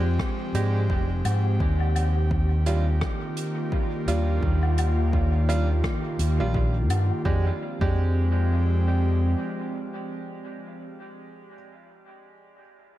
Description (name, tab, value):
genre	ambient dub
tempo	85 BPM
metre	4/4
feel	swing 59% on 16ths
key	F dorian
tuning	A4 = 435 Hz
part	airy breathy pad	sustained chords	0.0-10.8 s	Eb3 to G4	-30 LUFS	equal	chorus, vintage 12-bit sampler grit
part	overdriven fingered electric bass	bass	0.0-9.3 s	F1 to Ab2	-22 LUFS	equal	none
part	electronic kick drum	drums	0.2-8.0 s	none	-27 LUFS	equal	overdrive
part	soft-mallet drum kit	drums	0.2-7.1 s	hi-hat, rim click, woodblock	-36 LUFS	left 2 dB	dub echo
part	bright upright piano	stabs	0.5-11.5 s	G3 to G4	-34 LUFS	right 4 dB	dub echo
room	light reverb, small room reverb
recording	dark, warm production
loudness	-22 LUFS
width	side -14 dB against mid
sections	0.0-7.3 A section; 7.3-10.1 B section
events	none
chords	0.0 Fm69; 1.6 Ebmaj7; 7.3 Fm69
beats	0.20 0.90 | 1.61 2.31 3.02 3.72 | 4.43 5.14 5.84 6.55 | 7.25 7.96 8.67 9.37